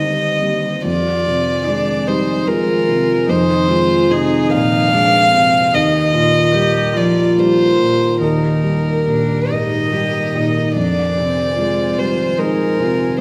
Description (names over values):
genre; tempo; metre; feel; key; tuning
neoclassical piano and strings; 73 BPM; 3/4; rubato; F dorian; A4 = 439 Hz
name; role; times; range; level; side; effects
warm violin; melody; 0.0-13.2 s; Ab4 to F5; -19 LUFS; equal; none
rich cello; second line; 0.0-13.2 s; G3 to G4; -22 LUFS; equal; none
felt-muted upright piano; accompaniment; 0.0-13.2 s; Eb2 to C5; -21 LUFS; equal; none
warbly tape-like pad; sustained chords; 0.0-13.2 s; Eb3 to Ab5; -29 LUFS; equal; chorus, built-in reverb
room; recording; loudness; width
wet recital hall reverb, RT60 1.5 s; recorded in a church or concert hall; -16 LUFS; mono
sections
0.8-13.2 A section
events
none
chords
0.0 Cm/Eb; 0.8 Fm7; 5.7 Eb; 10.8 Fm7